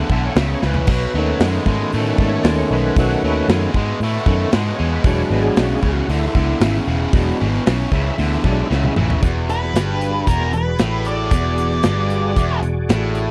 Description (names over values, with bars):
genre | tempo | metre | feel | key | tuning
blues rock power trio and southern rock | 115 BPM | 4/4 | straight | E mixolydian | A4 = 440 Hz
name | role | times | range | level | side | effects
overdriven tonewheel organ | sustained chords | 0.0-13.3 s | D#3 to F#5 | -26 LUFS | equal | slow rotary speaker, chorus vibrato
distorted electric guitar | riff | 0.0-13.3 s | E2 to A3 | -25 LUFS | equal | overdrive
vintage muted picked electric bass | bass | 0.1-13.3 s | E1 to A2 | -23 LUFS | equal | none
big rock drum kit | drums | 0.1-13.3 s | crash cymbal, hi-hat, kick drum, snare drum, toms | -20 LUFS | equal | none
octave-fuzz lead guitar | melody | 9.5-12.6 s | A#4 to D5 | -26 LUFS | equal | distortion
room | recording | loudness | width
small room reverb | dry, close 1970s-style studio recording | -18 LUFS | mono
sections
0.0-9.2 A section; 9.2-13.3 B section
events
tonewheel organ solo 0.0-9.2; drum fill 0.6, 8.7-9.2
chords
0.0 E7(no3); 0.9 B7; 5.0 E7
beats
0.36 | 0.88 1.40 1.93 2.44 | 2.97 3.49 4.01 4.53 | 5.05 5.57 6.09 6.61 | 7.13 7.65 8.17 8.70 | 9.22 9.74 10.26 10.79 | 11.31 11.84 12.36 12.88